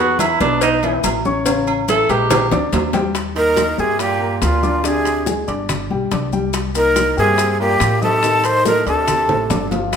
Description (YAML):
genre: Afro-Cuban jazz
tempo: 142 BPM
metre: 4/4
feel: straight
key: Eb major from 3.1 s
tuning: A4 = 440 Hz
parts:
  - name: breathy tenor saxophone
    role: second line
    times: 0.0-9.7 s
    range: Bb2 to A4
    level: -21 LUFS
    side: right 4 dB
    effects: none
  - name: dark baby grand piano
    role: accompaniment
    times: 0.0-10.0 s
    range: B2 to Eb6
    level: -22 LUFS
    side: left 3 dB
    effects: none
  - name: upright bass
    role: bass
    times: 0.0-10.0 s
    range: G1 to A2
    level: -24 LUFS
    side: equal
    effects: none
  - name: congas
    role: percussion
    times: 0.2-10.0 s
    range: none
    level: -28 LUFS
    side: left 1 dB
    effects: none
  - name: cowbell and bongos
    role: percussion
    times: 0.2-10.0 s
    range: none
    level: -25 LUFS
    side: left 4 dB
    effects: none
  - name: maracas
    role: percussion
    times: 0.2-10.0 s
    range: none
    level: -30 LUFS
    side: left 9 dB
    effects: none
  - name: timbales and agogo bells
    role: percussion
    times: 0.2-10.0 s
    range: none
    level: -25 LUFS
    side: right 5 dB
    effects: none
  - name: breathy jazz flute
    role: melody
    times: 3.4-9.7 s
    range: F4 to C5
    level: -17 LUFS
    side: equal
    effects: none
room: wet large studio reverb, RT60 1.3 s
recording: minimal, uncompressed stereo recording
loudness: -14 LUFS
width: side -7 dB against mid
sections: 0.0-3.1 A section; 3.1-10.0 B section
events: tenor saxophone solo 0.0-3.1; drum fill 2.3-3.1, 9.3-9.9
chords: 0.0 E5; 1.5 A9; 2.3 A#6; 3.1 Ebadd9; 4.8 Abmaj7#11; 5.7 G; 6.5 Cm7; 8.2 Cm13; 9.1 D5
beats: 0.20 0.62 1.04 | 1.46 1.88 2.31 2.73 | 3.15 3.57 4.00 4.42 | 4.84 5.27 5.69 6.12 | 6.54 6.96 7.39 7.81 | 8.23 8.66 9.08 9.50 | 9.93